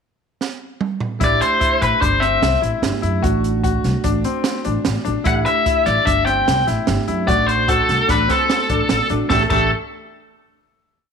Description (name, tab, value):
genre	progressive instrumental, band music in an uneven meter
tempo	148 BPM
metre	5/4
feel	straight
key	A dorian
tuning	A4 = 440 Hz
part	open jazz drum kit	drums	0.4-9.6 s	crash cymbal, hi-hat, kick drum, snare drum, toms	-23 LUFS	right 3 dB	none
part	biting lead guitar	melody	1.2-9.7 s	A4 to G5	-17 LUFS	left 2 dB	overdrive
part	bell-like tine electric piano	accompaniment	1.2-9.7 s	A3 to G4	-27 LUFS	right 12 dB	medium stereo tremolo
part	bright grand piano	arpeggios	1.2-9.7 s	A3 to F#4	-24 LUFS	left 10 dB	none
part	upright bass	bass	1.2-9.7 s	G1 to F#2	-21 LUFS	equal	none
room	moderate echo chamber reverb, RT60 1.4 s, small room ambience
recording	1960s-style stereo with parts hard left and right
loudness	-15 LUFS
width	side -6 dB against mid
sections	0.0-1.2 pickup bar; 1.2-9.3 A section; 9.3-11.1 final chord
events	drum fill 0.4-1.2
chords	0.0 N.C.; 1.2 Am7; 3.2 D7/A; 5.3 Am7; 7.3 D7/A; 9.3 A7sus4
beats	0.01 0.41 0.82 | 1.22 1.62 2.02 2.43 2.83 | 3.23 3.64 4.04 4.45 4.85 | 5.26 5.66 6.07 6.47 6.88 | 7.28 7.69 8.09 8.50 8.90 | 9.30